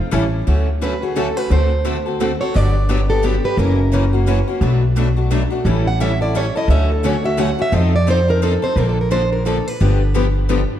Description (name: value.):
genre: acoustic string swing (jazz manouche).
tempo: 174 BPM.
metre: 3/4.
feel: swing 60% on 8ths.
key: D major.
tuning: A4 = 441 Hz.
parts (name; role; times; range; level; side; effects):
picked steel-string acoustic guitar; accompaniment; 0.1-10.6 s; B2 to A4; -22 LUFS; left 4 dB; none.
picked steel-string acoustic guitar; accompaniment; 0.1-10.6 s; B2 to B4; -25 LUFS; right 6 dB; none.
upright bass; bass; 0.1-10.6 s; F#1 to F2; -17 LUFS; equal; none.
picked plugged-in steel-string acoustic guitar; melody; 0.8-10.5 s; G4 to F#5; -22 LUFS; right 2 dB; none.
room: moderate concert hall reverb, RT60 2.1 s.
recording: dark, warm production.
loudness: -15 LUFS.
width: side -11 dB against mid.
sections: 0.5-8.8 A section; 8.8-10.8 A section.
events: steel-string acoustic guitar solo 0.5-10.8.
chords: 0.1 A7; 0.5 Dmaj7; 1.5 D7; 2.5 Gmaj7; 3.6 F#7; 4.6 Bm7; 5.7 A7; 6.7 Dmaj7; 7.7 F7; 8.8 Bbmaj7; 9.8 G7.